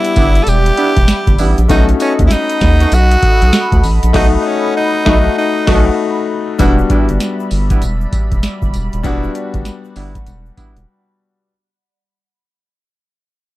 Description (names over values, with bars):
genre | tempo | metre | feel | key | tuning
R&B, new jack swing | 98 BPM | 4/4 | swing 63% on 16ths | E dorian | A4 = 439 Hz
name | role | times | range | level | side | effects
raspy tenor saxophone | melody | 0.0-5.9 s | C#4 to A4 | -16 LUFS | equal | none
clear concert grand piano | accompaniment | 0.0-11.5 s | G3 to F#5 | -19 LUFS | left 6 dB | none
phased analog pad | sustained chords | 0.0-11.5 s | G3 to B5 | -25 LUFS | equal | phaser, chorus
booming analog drum machine | drums | 0.0-10.9 s | crash cymbal, hi-hat, kick drum, snare drum, tambourine | -14 LUFS | equal | none
egg shaker | percussion | 0.0-10.9 s | none | -42 LUFS | right 8 dB | none
warm horn section | stabs | 0.2-10.8 s | G3 to F#4 | -21 LUFS | right 3 dB | none
round analog bass | bass | 0.2-10.9 s | D#1 to D#2 | -14 LUFS | equal | none
room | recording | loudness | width
small room ambience | dark, warm production | -10 LUFS | side -16 dB against mid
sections
0.0-6.6 A section; 6.6-11.5 B section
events
band accent 4.1-6.6; fade-out 6.6-11.5; break 10.9-11.5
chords
0.0 Em7; 1.7 B7; 6.6 Em7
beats
0.47 1.08 | 1.70 2.31 2.92 3.53 | 4.14 4.76 5.37 5.98 | 6.59 7.21 7.82 8.43 | 9.04 9.65 10.27 10.88